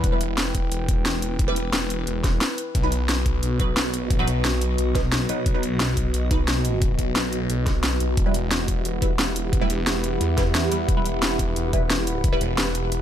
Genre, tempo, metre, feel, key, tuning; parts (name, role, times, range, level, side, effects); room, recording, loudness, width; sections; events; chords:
dark technical drum and bass; 177 BPM; 4/4; straight; E harmonic minor; A4 = 440 Hz
dark analog pad; sustained chords; 0.0-13.0 s; B3 to G5; -31 LUFS; equal; chorus, sidechain pumping
filtered dub chord stab; stabs; 0.0-12.4 s; F#3 to B4; -30 LUFS; right 1 dB; phaser, wide subtle chorus, ping-pong delay
phased detuned saw bass; bass; 0.0-13.0 s; E1 to E2; -25 LUFS; equal; phaser, tube saturation
drum and bass drum kit; drums; 0.0-13.0 s; hi-hat, snare drum; -25 LUFS; equal; overdrive
electronic kick drum; drums; 0.0-12.3 s; -23 LUFS; equal; overdrive
granular cloud pad; texture; 3.5-13.0 s; F#4 to B5; -31 LUFS; right 1 dB; built-in reverb, sidechain pumping
digital ambience; -20 LUFS; side -10 dB against mid
0.0-13.0 A section
0.0 Em; 2.7 B; 8.2 Em